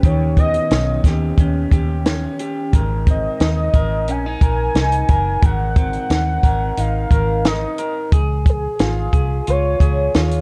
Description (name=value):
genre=indie pop, bedroom pop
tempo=89 BPM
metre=4/4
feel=straight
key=unclear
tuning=A4 = 445 Hz
part: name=warm velvety synth lead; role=melody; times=0.0-10.4 s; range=Ab4 to Ab5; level=-25 LUFS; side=equal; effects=subtle chorus
part: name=electric guitar through a small old amp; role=accompaniment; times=0.0-10.4 s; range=Ab2 to Bb4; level=-26 LUFS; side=equal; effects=subtle chorus, warbly pitch drift
part: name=vintage muted fingered electric bass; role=bass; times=0.0-10.4 s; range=Gb1 to Eb2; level=-22 LUFS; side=equal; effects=none
part: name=compact cocktail drum kit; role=drums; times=0.0-10.4 s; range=hi-hat, kick drum, snare drum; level=-19 LUFS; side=equal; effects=vintage 12-bit sampler grit
room=light reverb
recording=cassette tape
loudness=-18 LUFS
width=mono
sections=0.0-10.4 A section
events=none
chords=0.0 Ebaug7; 2.7 Ab9; 8.1 Dbmaj7